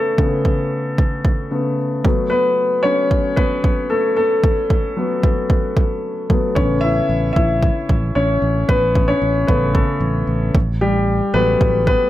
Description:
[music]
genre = piano-driven pop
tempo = 113 BPM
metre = 4/4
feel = straight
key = A mixolydian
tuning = A4 = 445 Hz
[part]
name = warm concert grand piano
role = accompaniment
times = 0.0-12.1 s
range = C#3 to E5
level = -17 LUFS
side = left 1 dB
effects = none
[part]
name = electronic kick drum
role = drums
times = 0.2-12.0 s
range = none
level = -17 LUFS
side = right 1 dB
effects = none
[part]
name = fingered electric bass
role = bass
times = 6.6-11.9 s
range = A1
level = -20 LUFS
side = right 1 dB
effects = none
[sound]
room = moderate large studio reverb, RT60 0.9 s, digital ambience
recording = none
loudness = -15 LUFS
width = side -14 dB against mid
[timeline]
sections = 0.0-12.1 A section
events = grand piano solo 0.0-12.1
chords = 0.0 Aadd9; 2.0 F#madd11; 6.6 Aadd9; 10.5 Gmaj7/A

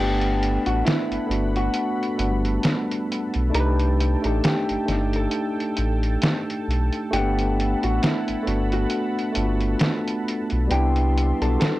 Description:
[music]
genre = lo-fi hip hop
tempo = 67 BPM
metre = 4/4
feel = swing 58% on 16ths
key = G major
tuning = A4 = 441 Hz
[part]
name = vintage hollow-body jazz guitar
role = melody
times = 0.0-11.8 s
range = E4 to B4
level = -28 LUFS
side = left 2 dB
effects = low-pass filter, tape echo
[part]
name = tine electric piano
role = accompaniment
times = 0.0-11.8 s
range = G3 to F#5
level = -25 LUFS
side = equal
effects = medium stereo tremolo, cassette tape, low-pass filter
[part]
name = warm analog pad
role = sustained chords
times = 0.0-11.8 s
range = B3 to C6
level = -35 LUFS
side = right 2 dB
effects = chorus, tremolo, low-pass filter
[part]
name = sub bass with octave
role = bass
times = 0.0-11.6 s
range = G1 to C2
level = -23 LUFS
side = equal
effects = transformer saturation
[part]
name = lo-fi sampler-style drum kit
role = drums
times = 0.2-11.8 s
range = hi-hat, snare drum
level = -25 LUFS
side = equal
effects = vintage 12-bit sampler grit
[sound]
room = light reverb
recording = dry, gritty hardware recording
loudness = -20 LUFS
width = side -17 dB against mid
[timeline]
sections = 0.0-11.8 A section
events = break 0.0-11.8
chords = 0.0 Gmaj9; 3.5 Cm6; 7.1 Gmaj9; 10.7 Cmaj9

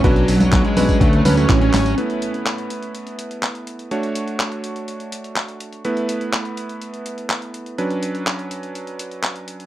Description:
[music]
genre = italo disco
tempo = 124 BPM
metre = 4/4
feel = straight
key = A major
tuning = A4 = 440 Hz
[part]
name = dark smooth lead guitar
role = melody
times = 0.0-1.9 s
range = F#3 to C#5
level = -21 LUFS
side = right 1 dB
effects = overdrive, tape echo
[part]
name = bright electric grand piano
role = stabs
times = 0.0-9.7 s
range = D3 to C#5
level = -23 LUFS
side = right 2 dB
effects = tape echo
[part]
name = fat analog bass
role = bass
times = 0.0-1.9 s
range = A1 to D2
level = -19 LUFS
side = equal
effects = tube saturation
[part]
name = dusty soul sampler-style drum kit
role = drums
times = 0.0-9.7 s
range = congas, handclaps, hi-hat, tambourine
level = -24 LUFS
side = left 1 dB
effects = small room ambience
[part]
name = electronic kick drum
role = drums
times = 0.0-1.6 s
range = none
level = -17 LUFS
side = equal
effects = small room ambience
[sound]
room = little or no reverb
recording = dry, close 1970s-style studio recording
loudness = -18 LUFS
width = side -14 dB against mid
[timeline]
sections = 0.0-2.0 A section; 2.0-9.7 B section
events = drum fill 1.7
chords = 0.0 Bmadd9; 2.0 Asus2; 3.9 Dmaj7; 5.8 Asus2; 7.8 Bmadd9

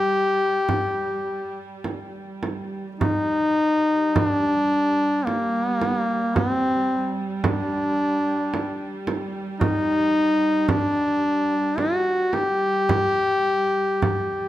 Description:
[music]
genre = caucasian folk, Caucasian lament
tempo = 55 BPM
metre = 3/4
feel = uneven beats, rubato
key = G harmonic minor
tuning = A4 = 438 Hz
[part]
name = clear duduk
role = melody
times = 0.0-14.5 s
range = Bb3 to G4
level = -21 LUFS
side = left 1 dB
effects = none
[part]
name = warm chamber string section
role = drone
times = 0.0-14.5 s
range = G3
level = -33 LUFS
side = right 2 dB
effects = none
[part]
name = frame drum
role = percussion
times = 0.7-14.3 s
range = none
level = -25 LUFS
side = right 3 dB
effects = none
[sound]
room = moderate recital hall reverb, RT60 1.7 s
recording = none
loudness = -20 LUFS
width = side -14 dB against mid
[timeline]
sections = 0.0-3.0 A section; 3.0-14.5 B section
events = none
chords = none

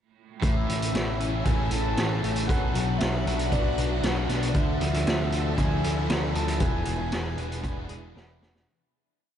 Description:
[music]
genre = rock, shoegaze and dream pop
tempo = 116 BPM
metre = 4/4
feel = straight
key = A major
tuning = A4 = 441 Hz
[part]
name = mellow horn-like synth lead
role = melody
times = 0.4-8.2 s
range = D5 to A5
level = -34 LUFS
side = equal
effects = chorus, ping-pong delay
[part]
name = string machine, violins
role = sustained chords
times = 0.4-8.6 s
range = C#4 to F#5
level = -35 LUFS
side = equal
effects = ensemble chorus
[part]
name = semi-hollow electric guitar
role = arpeggios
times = 0.4-8.7 s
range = E3 to G#4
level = -38 LUFS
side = left 9 dB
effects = analog chorus, ping-pong delay
[part]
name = overdriven electric guitar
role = riff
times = 0.4-8.7 s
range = E2 to G#4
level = -34 LUFS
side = right 6 dB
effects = reverse reverb
[part]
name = thick fuzz guitar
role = riff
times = 0.4-8.7 s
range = E2 to G#4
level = -33 LUFS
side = left 8 dB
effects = distortion, lush chorus
[part]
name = growling picked electric bass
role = bass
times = 0.4-8.7 s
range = E1 to D2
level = -29 LUFS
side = equal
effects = overdrive
[part]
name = raw garage drum kit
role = drums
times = 0.4-8.7 s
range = hi-hat, kick drum, snare drum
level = -28 LUFS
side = equal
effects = none
[sound]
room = moderate huge ambient reverb, RT60 8.0 s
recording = dreamy mix soaked in reverb, nothing above 10.5 kHz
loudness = -24 LUFS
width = side -9 dB against mid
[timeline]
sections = 0.4-8.7 verse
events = fade-out 6.6-8.7; drum fill 8.2-8.7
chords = 0.4 Amaj7; 2.5 Bm; 4.5 Dmadd9; 6.6 E7

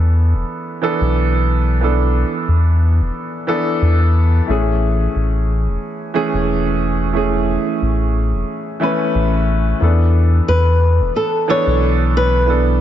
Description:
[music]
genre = sunset chillout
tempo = 90 BPM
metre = 4/4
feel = swing 56% on 16ths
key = A major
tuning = A4 = 440 Hz
[part]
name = clear baby grand piano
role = accompaniment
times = 0.0-12.8 s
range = E3 to B4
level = -19 LUFS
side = moving between left 4 dB and right 6 dB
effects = auto-pan, low-pass filter, digital delay
[part]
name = round analog bass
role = bass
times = 0.0-12.8 s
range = E1 to E2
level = -15 LUFS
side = equal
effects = none
[part]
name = flamenco guitar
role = melody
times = 10.5-12.8 s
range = A4 to C#5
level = -17 LUFS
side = left 2 dB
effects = ping-pong delay
[sound]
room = light reverb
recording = nothing above 7.6 kHz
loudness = -14 LUFS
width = side -11 dB against mid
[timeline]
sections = 0.0-12.8 A section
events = none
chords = 0.0 E7sus4; 4.5 Amaj7; 9.8 E7sus4

